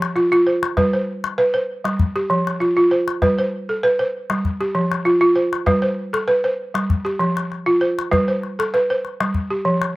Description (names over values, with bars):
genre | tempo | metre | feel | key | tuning
west african traditional, West African string and xylophone music | 98 BPM | 4/4 | straight | F lydian | A4 = 440 Hz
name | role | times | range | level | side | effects
balafon | arpeggios | 0.0-10.0 s | F3 to C5 | -17 LUFS | right 1 dB | slapback echo
calabash | percussion | 0.0-9.9 s | none | -23 LUFS | left 4 dB | none
room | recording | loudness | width
light reverb | recorded outdoors, with no room sound | -17 LUFS | side -19 dB against mid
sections
0.0-10.0 A section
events
none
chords
0.0 F5; 0.8 G; 2.0 F5; 3.2 G; 4.4 F5; 5.7 G; 6.9 F5; 8.1 G; 9.3 F5